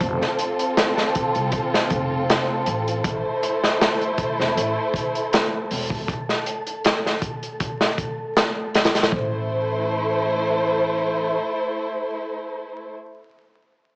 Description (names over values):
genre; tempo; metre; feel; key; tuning
trip hop; 79 BPM; 4/4; swing 54% on 16ths; A minor; A4 = 440 Hz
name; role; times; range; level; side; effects
warm symphonic violin section; sustained chords; 0.0-12.9 s; A3 to C5; -23 LUFS; equal; cassette tape
upright bass; bass; 0.0-11.4 s; E1 to C2; -28 LUFS; equal; none
crunchy breakbeat drum kit; drums; 0.0-9.3 s; hi-hat, kick drum, snare drum; -21 LUFS; equal; none
wind-like tuned noise texture; texture; 0.0-9.1 s; A4; -30 LUFS; equal; built-in reverb, cassette tape
room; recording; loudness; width
moderate spring reverb, RT60 2.5 s; home recording on cassette, vinyl crackle, small speaker sound; -20 LUFS; side -30 dB against mid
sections
0.0-9.1 A section; 9.1-12.2 B section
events
none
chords
0.0 F; 3.0 Am; 6.1 N.C.; 9.1 Am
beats
| 0.01 0.77 1.53 2.29 | 3.04 3.80 4.56 5.32 | 6.08 6.84 7.60 8.36 | 9.12 9.88 10.64 11.40